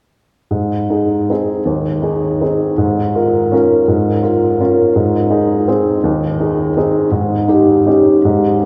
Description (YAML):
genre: classical, piano waltz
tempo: 152-177 BPM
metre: 3/4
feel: rubato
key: Ab major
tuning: A4 = 439 Hz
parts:
  - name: warm baby grand piano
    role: solo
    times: 0.5-8.7 s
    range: Eb2 to Bb4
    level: -14 LUFS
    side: equal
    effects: none
room: wet cathedral reverb, RT60 6.0 s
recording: heard from further back in the room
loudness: -14 LUFS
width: mono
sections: 0.5-8.7 A section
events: none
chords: 0.5 Ab; 2.8 Bbm7/Ab; 5.0 Ab; 7.1 Eb7/Ab